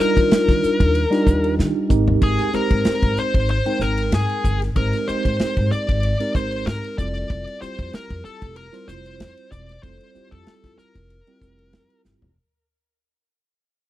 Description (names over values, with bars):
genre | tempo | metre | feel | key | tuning
electric jazz fusion | 95 BPM | 4/4 | swing 54% on 16ths | unclear | A4 = 440 Hz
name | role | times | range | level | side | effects
smooth overdriven lead guitar | melody | 0.0-12.0 s | Ab4 to D5 | -24 LUFS | left 1 dB | none
mellow tine electric piano | accompaniment | 0.0-12.3 s | G3 to G5 | -23 LUFS | right 1 dB | medium stereo tremolo, phaser
upright bass | bass | 0.0-12.3 s | E1 to Eb3 | -23 LUFS | equal | none
modern studio drum kit | drums | 0.2-12.4 s | hi-hat, kick drum, ride cymbal, snare drum, splash cymbal, toms | -21 LUFS | equal | none
room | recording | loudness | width
little or no reverb | dry, close 1970s-style studio recording | -17 LUFS | side -14 dB against mid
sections
0.0-12.4 A section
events
fade-out 0.0-12.4; drum fill 1.6-2.2, 12.0-12.4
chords
0.0 Ebmaj9; 1.9 Abmaj9; 7.0 Fmaj9